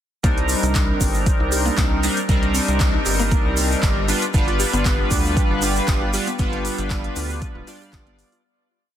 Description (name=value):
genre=deep house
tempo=117 BPM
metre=4/4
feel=swing 53% on 16ths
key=C minor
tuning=A4 = 440 Hz
part: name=mallet-like synth pluck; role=arpeggios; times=0.2-8.4 s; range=Bb3 to G4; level=-30 LUFS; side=left 4 dB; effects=chorus, sidechain pumping, ping-pong delay
part: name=chorused polysynth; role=stabs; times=0.2-8.4 s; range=G3 to D5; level=-22 LUFS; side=right 1 dB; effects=sidechain pumping, tape echo
part: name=rubbery square bass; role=bass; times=0.2-8.2 s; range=D1 to D2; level=-24 LUFS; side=equal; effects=sidechain pumping
part: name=deep house drum kit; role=drums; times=0.2-8.4 s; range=handclaps, hi-hat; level=-27 LUFS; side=left 1 dB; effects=none
part: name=electronic kick drum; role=drums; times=0.2-8.0 s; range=none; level=-20 LUFS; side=equal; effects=none
part: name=tube shaker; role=percussion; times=0.2-8.4 s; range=none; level=-31 LUFS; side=right 4 dB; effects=none
part: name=dark analog pad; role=sustained chords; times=4.3-8.4 s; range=B4 to D6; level=-32 LUFS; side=right 1 dB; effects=chorus, sidechain pumping
room=little or no reverb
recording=dense, heavily limited modern master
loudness=-17 LUFS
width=side -10 dB against mid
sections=0.2-8.4 drop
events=drop 0.2-8.4; fade-out 5.7-8.4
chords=0.2 Cm7; 4.1 G7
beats=| 0.24 0.75 1.26 1.78 | 2.29 2.80 3.32 3.83 | 4.34 4.85 5.37 5.88 | 6.39 6.91 7.42 7.93